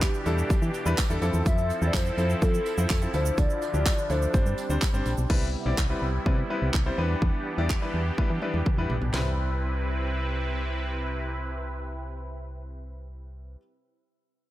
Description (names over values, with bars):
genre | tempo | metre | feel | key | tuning
dance-pop | 125 BPM | 4/4 | straight | C major | A4 = 441 Hz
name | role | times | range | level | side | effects
hollow clarinet-like synth lead | melody | 0.0-5.1 s | G4 to E5 | -32 LUFS | left 1 dB | chorus, digital delay
clear concert grand piano | accompaniment | 0.0-13.6 s | F3 to D5 | -33 LUFS | left 2 dB | none
filtered supersaw swell | sustained chords | 0.0-13.6 s | B2 to B4 | -34 LUFS | right 1 dB | sidechain pumping
solid FM bass | bass | 0.0-13.6 s | G1 to F3 | -28 LUFS | equal | sidechain pumping
house drum kit | drums | 0.0-9.2 s | crash cymbal, handclaps, kick drum, shaker, snare drum, toms | -26 LUFS | equal | none
tambourine | percussion | 0.0-5.2 s | none | -45 LUFS | right 9 dB | none
room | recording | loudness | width
little or no reverb | none | -24 LUFS | side -15 dB against mid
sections
0.0-5.3 A section; 5.3-9.1 B section; 9.1-13.0 C section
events
drum fill 8.2-9.1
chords
0.0 Em7; 1.2 Fmaj7; 3.1 Dmadd9; 4.3 Gsus4; 5.3 Cmaj7; 7.0 Em7; 9.1 Cmaj7